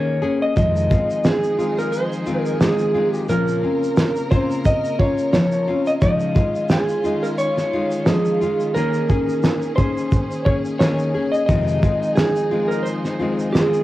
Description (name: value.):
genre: acoustic pop.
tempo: 88 BPM.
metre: 4/4.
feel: swing 55% on 16ths.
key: unclear.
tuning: A4 = 439 Hz.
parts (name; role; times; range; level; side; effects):
electric slide guitar; melody; 0.0-13.8 s; Ab4 to Eb5; -21 LUFS; right 1 dB; cassette tape, plate reverb.
nylon-string guitar; accompaniment; 0.0-13.8 s; F2 to Ab4; -22 LUFS; left 2 dB; plate reverb.
warm studio string section; sustained chords; 0.6-13.8 s; Db3 to Bb4; -30 LUFS; right 1 dB; none.
cloth-damped thuddy drum kit; drums; 0.6-13.8 s; kick drum, shaker, snare drum; -19 LUFS; right 1 dB; cassette tape.
room: moderate booth ambience, RT60 0.2 s.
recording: home recording on cassette, vinyl crackle.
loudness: -17 LUFS.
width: side -16 dB against mid.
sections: 0.6-13.8 A section.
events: break 0.0-0.6.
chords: 0.0 Eb7sus4; 0.6 Fm7; 3.3 Bbmadd9; 6.0 Dbadd9; 8.8 Eb7sus4; 11.5 Fm7.